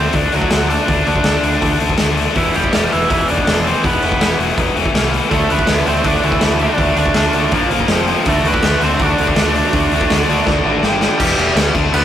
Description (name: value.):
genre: punk rock.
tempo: 163 BPM.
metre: 4/4.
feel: straight.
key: unclear.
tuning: A4 = 440 Hz.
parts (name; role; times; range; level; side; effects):
crunchy overdriven guitar; melody; 0.0-12.0 s; E3 to D5; -20 LUFS; right 2 dB; tape echo.
tight distorted guitar; riff; 0.0-12.0 s; E2 to D4; -18 LUFS; left 5 dB; distortion.
growling picked electric bass; bass; 0.0-12.0 s; E1 to D2; -20 LUFS; equal; overdrive.
raw garage drum kit; drums; 0.1-12.0 s; crash cymbal, hi-hat, kick drum, snare drum; -18 LUFS; equal; none.
overdriven electric guitar; riff; 5.3-11.2 s; A#2 to D5; -20 LUFS; right 5 dB; none.
room: light reverb.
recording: rough rehearsal-room recording, warm saturation.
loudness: -12 LUFS.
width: side -10 dB against mid.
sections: 0.0-11.2 A section.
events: drum fill 10.5-11.2.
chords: 0.0 D; 2.4 Em; 5.3 D; 7.5 A#5; 7.9 F5; 8.3 D; 10.8 G5; 11.2 Em.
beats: 0.14 0.51 | 0.88 1.25 1.62 1.99 | 2.36 2.73 3.10 3.47 | 3.84 4.21 4.58 4.95 | 5.32 5.68 6.05 6.42 | 6.79 7.16 7.53 7.90 | 8.26 8.63 9.00 9.37 | 9.74 10.10 10.47 10.84 | 11.21 11.57 11.94.